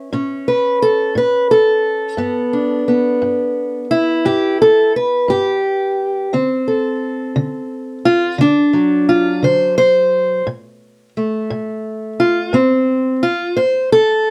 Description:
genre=acoustic country blues, solo or duo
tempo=58 BPM (dotted quarters)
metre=12/8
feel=straight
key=D mixolydian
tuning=A4 = 438 Hz
part: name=fingerpicked steel-string acoustic guitar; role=solo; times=0.0-14.3 s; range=G2 to E5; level=-16 LUFS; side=equal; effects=none
room=light reverb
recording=none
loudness=-16 LUFS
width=mono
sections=0.0-14.3 A section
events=none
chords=0.0 A; 2.2 G; 6.3 D7; 10.5 N.C.

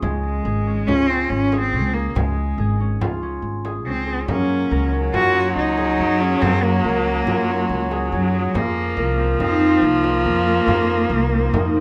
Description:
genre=contemporary instrumental, chamber music in an uneven meter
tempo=141 BPM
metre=5/4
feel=straight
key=unclear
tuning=A4 = 440 Hz
part: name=concert harp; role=arpeggios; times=0.0-11.8 s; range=Ab3 to Bb4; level=-27 LUFS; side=equal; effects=none
part: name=upright bass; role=bass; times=0.0-11.8 s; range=Ab1 to Gb2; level=-25 LUFS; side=equal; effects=none
part: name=frame drum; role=percussion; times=0.0-11.7 s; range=none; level=-30 LUFS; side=equal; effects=none
part: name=clear cello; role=melody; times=0.2-11.8 s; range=Gb3 to Gb4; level=-24 LUFS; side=equal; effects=none
part: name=warm viola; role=second line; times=4.3-11.8 s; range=F3 to Gb3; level=-24 LUFS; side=equal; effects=none
room=light reverb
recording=close, detailed microphones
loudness=-20 LUFS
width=mono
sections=0.0-11.8 A section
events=none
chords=0.0 Dbmaj7; 4.3 Gbmaj9; 8.5 F7sus4

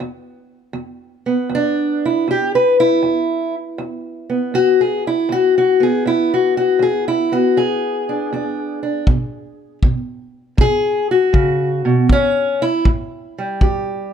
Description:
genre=acoustic country blues, solo or duo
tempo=79 BPM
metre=4/4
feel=swing 66% on 8ths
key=E mixolydian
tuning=A4 = 440 Hz
part: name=fingerpicked steel-string acoustic guitar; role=melody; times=0.0-14.1 s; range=E2 to B4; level=-15 LUFS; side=left 1 dB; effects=plate reverb
part: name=kick drum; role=drums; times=9.1-13.8 s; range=none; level=-15 LUFS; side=equal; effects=none
room=moderate studio reverb, RT60 0.6 s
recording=none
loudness=-15 LUFS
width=side -8 dB against mid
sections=0.0-14.1 A section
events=steel-string acoustic guitar solo 0.0-14.1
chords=0.0 E; 9.1 B5; 12.1 A7

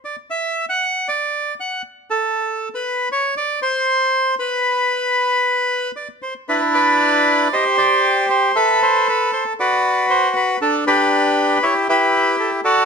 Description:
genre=tango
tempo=117 BPM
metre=4/4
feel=rubato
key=unclear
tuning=A4 = 440 Hz
part: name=bandoneon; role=solo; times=0.0-12.9 s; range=D4 to F#5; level=-15 LUFS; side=equal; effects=none
room=moderate large studio reverb, RT60 1.2 s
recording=close, detailed microphones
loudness=-15 LUFS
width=side -5 dB against mid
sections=0.0-6.5 A section; 6.5-12.9 B section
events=none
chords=0.0 N.C.; 6.5 Bmadd11/D; 7.5 C5; 8.6 Asus2; 9.6 Bm; 10.6 G; 11.6 Emadd11

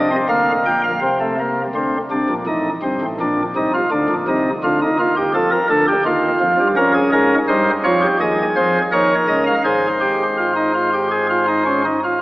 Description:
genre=classical, baroque-style 3-part fugue for pipe organ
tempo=83 BPM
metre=4/4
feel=straight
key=Ab major from 6.8 s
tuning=A4 = 444 Hz
part: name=pipe organ, sparkling flutes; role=solo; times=0.0-12.2 s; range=G1 to G5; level=-15 LUFS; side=equal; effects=none
room=wet church reverb, RT60 3.0 s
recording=AM radio sound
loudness=-15 LUFS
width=side -19 dB against mid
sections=0.0-1.0 A section; 1.0-12.2 B section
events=none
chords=0.0 Bb; 1.0 Bbmaj9; 2.5 F7; 3.9 Bb; 5.3 F; 6.8 Db/F; 8.2 Ab/Eb; 8.9 Eb5; 9.6 Ab

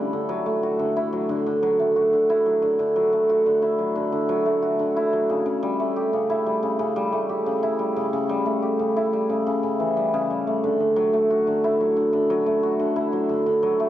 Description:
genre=folktronica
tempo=90 BPM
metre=4/4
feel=straight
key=D major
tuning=A4 = 439 Hz
part: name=cimbalom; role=solo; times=0.0-13.9 s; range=C#3 to G4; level=-20 LUFS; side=equal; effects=none
room=moderate scoring stage reverb, RT60 1.8 s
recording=none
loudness=-20 LUFS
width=side -12 dB against mid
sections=0.0-13.9 A section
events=none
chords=0.0 Dadd9; 5.3 A7; 10.6 Dadd9

